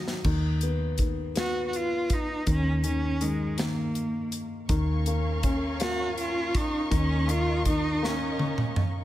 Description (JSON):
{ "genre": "six-eight pop ballad", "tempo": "54 BPM (dotted quarters)", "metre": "6/8", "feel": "straight", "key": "unclear", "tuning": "A4 = 436 Hz", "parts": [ { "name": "dark baby grand piano", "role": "accompaniment", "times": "0.0-9.0 s", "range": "Eb2 to Db4", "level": "-32 LUFS", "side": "left 2 dB", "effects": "none" }, { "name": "modern studio drum kit", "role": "drums", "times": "0.1-8.9 s", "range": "crash cymbal, hi-hat, kick drum, snare drum, toms", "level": "-29 LUFS", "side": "equal", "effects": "none" }, { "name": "vintage muted fingered electric bass", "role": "bass", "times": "0.2-9.0 s", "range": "D#2", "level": "-29 LUFS", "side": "equal", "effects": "none" }, { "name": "rich cello", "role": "melody", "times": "1.4-8.9 s", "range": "Ab3 to F#4", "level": "-30 LUFS", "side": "right 1 dB", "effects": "digital delay" }, { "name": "warm studio string section", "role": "sustained chords", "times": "4.7-9.0 s", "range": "Db4 to Db6", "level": "-34 LUFS", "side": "equal", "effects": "none" } ], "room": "small room ambience", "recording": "none", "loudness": "-25 LUFS", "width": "side -14 dB against mid", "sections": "0.2-9.0 A section", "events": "drum fill 0.0, 8.0-9.0", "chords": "0.2 B/D#; 2.5 Eb7(no3); 4.7 Bbm/Eb; 6.9 Eb5", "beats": "| 0.25 1.36 | 2.47 3.58 | 4.69 5.80 | 6.91 8.02" }